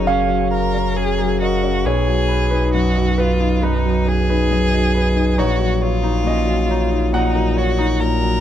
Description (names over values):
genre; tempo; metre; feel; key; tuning
neoclassical piano and strings; 68 BPM; 4/4; rubato; unclear; A4 = 440 Hz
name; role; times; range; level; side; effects
rich violin; melody; 0.0-8.4 s; C#4 to A#4; -23 LUFS; equal; none
clear concert grand piano; accompaniment; 0.0-8.4 s; A#1 to F#5; -19 LUFS; left 1 dB; none
Celtic harp; arpeggios; 0.0-8.4 s; C#4 to B5; -28 LUFS; left 1 dB; none
saturated sub bass; bass; 0.0-8.4 s; F#1 to B1; -20 LUFS; right 1 dB; none
room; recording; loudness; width
little or no reverb; close, detailed microphones; -15 LUFS; side -10 dB against mid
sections
0.0-8.4 A section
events
none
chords
0.0 F#; 1.9 Badd9; 5.4 D#m7/A#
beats
0.06 0.97 | 1.85 2.74 3.64 4.52 | 5.39 6.26 7.14 8.00